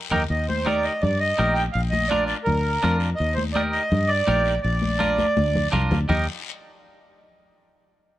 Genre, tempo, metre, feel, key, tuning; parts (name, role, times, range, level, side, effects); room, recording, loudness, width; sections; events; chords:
latin, cumbia; 166 BPM; 4/4; straight; Eb major; A4 = 440 Hz
accordion; melody; 0.1-6.3 s; Bb4 to G5; -24 LUFS; right 2 dB
semi-hollow electric guitar; accompaniment; 0.1-6.3 s; D4 to Bb4; -29 LUFS; right 2 dB
fingered electric bass; bass; 0.1-6.3 s; Bb1 to G2; -24 LUFS; left 1 dB
congas; percussion; 0.1-6.2 s; -28 LUFS; left 3 dB
guiro; percussion; 0.1-6.2 s; -37 LUFS; left 9 dB
light reverb; worn, warbling old tape, cassette tape, warbly pitch drift; -20 LUFS; side -14 dB against mid
0.3-6.1 A section; 6.1-7.5 B section
drum fill 0.0, 5.2-6.1; band accent 0.0
0.3 Eb; 1.7 Bb; 3.2 Eb; 4.6 Bb; 6.1 Eb